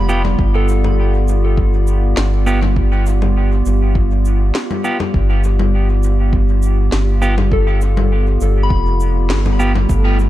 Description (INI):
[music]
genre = ambient dub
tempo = 101 BPM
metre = 4/4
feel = swing 53% on 16ths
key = G mixolydian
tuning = A4 = 437 Hz
[part]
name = warbly tape-like pad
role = sustained chords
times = 0.0-10.3 s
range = B3 to F5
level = -22 LUFS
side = right 2 dB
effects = chorus, built-in reverb, vintage 12-bit sampler grit
[part]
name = soft synth bell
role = arpeggios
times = 0.0-10.3 s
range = A4 to B5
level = -25 LUFS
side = left 4 dB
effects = chorus, phaser, vintage 12-bit sampler grit, tape echo
[part]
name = soft dub sub bass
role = bass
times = 0.0-10.3 s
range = F1 to G1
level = -14 LUFS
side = equal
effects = tube saturation
[part]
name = clean electric guitar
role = stabs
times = 0.1-9.7 s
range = B3 to G4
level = -25 LUFS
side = right 2 dB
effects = vibrato effect, dub echo
[part]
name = electronic shaker, congas and snare drum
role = drums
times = 0.1-10.3 s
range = none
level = -24 LUFS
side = left 3 dB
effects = dub echo
[part]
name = electronic kick drum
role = drums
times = 0.4-10.0 s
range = none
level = -18 LUFS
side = equal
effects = none
[part]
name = bubbling stepped-filter texture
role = texture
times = 9.9-10.3 s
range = A3 to A4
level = -24 LUFS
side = equal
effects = chorus, built-in reverb
[sound]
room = little or no reverb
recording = none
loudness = -13 LUFS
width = side -14 dB against mid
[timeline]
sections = 0.0-9.9 A section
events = band accent 9.3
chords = 0.0 G7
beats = | 0.39 0.98 1.57 2.17 | 2.76 3.36 3.95 4.55 | 5.14 5.73 6.33 6.92 | 7.52 8.11 8.70 9.30 | 9.89